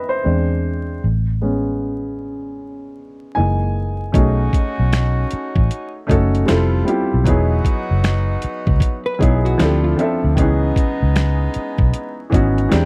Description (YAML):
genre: R&B, neo-soul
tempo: 77 BPM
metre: 4/4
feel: swing 63% on 16ths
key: E major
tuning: A4 = 440 Hz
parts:
  - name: warm baby grand piano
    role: accompaniment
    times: 0.0-12.9 s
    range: D#3 to G#5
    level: -23 LUFS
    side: equal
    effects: low-pass filter
  - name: vintage muted fingered electric bass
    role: bass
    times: 0.0-12.9 s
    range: E1 to E2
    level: -20 LUFS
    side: equal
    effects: none
  - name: warm horn section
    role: stabs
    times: 4.1-12.9 s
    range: G#3 to A#4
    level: -30 LUFS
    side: equal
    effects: none
  - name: boom bap sampler-style drum kit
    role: drums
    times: 4.1-12.9 s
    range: finger snaps, hi-hat, kick drum, snare drum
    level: -20 LUFS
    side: equal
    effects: none
  - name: hollow-body jazz guitar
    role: second line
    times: 9.1-10.3 s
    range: F4 to B4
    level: -27 LUFS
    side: equal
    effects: slapback echo
room: little or no reverb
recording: dry, close 1970s-style studio recording, vinyl crackle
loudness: -18 LUFS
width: mono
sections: 0.0-4.1 A section; 4.1-12.9 B section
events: grand piano solo 0.0-4.1; filter sweep on grand piano 0.0-4.1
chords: 0.2 Eaug7; 1.0 Amaj9; 3.4 F#13; 4.1 B13; 6.5 Fmaj9; 7.3 Emaj9; 9.6 Dm9; 10.4 C#m9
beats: 0.24 | 1.02 1.80 2.58 3.36 | 4.14 4.92 5.70 6.47 | 7.25 8.03 8.81 9.59 | 10.37 11.15 11.93 12.71